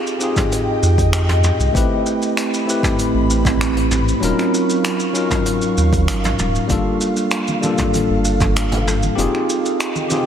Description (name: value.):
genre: sunset chillout.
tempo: 97 BPM.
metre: 4/4.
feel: straight.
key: unclear.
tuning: A4 = 439 Hz.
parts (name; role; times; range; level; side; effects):
bell-like tine electric piano; accompaniment; 0.0-10.3 s; Gb3 to B4; -20 LUFS; moving between left 4 dB and right 4 dB; auto-pan, digital delay.
ethereal airy pad; sustained chords; 0.0-10.3 s; Gb3 to Db6; -23 LUFS; right 1 dB; ensemble chorus, built-in reverb.
vintage brush drum kit; drums; 0.1-10.2 s; finger snaps, hi-hat, shaker, toms; -23 LUFS; equal; none.
electronic kick drum; drums; 0.4-8.5 s; none; -22 LUFS; equal; overdrive.
warm sub bass; bass; 0.8-9.3 s; Eb1 to F2; -18 LUFS; equal; tube saturation.
congas; percussion; 7.5-10.2 s; none; -28 LUFS; right 1 dB; none.
room: moderate lush hall reverb, RT60 2.8 s.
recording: big arena sound.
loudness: -15 LUFS.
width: side -9 dB against mid.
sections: 0.0-10.3 A section.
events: none.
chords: 0.0 Fm9; 1.8 Am9; 4.2 Ebm9; 6.7 Gm9; 9.2 Fm9.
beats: 0.52 1.14 | 1.76 2.38 3.00 3.61 | 4.23 4.85 5.47 6.09 | 6.71 7.33 7.94 8.56 | 9.18 9.80.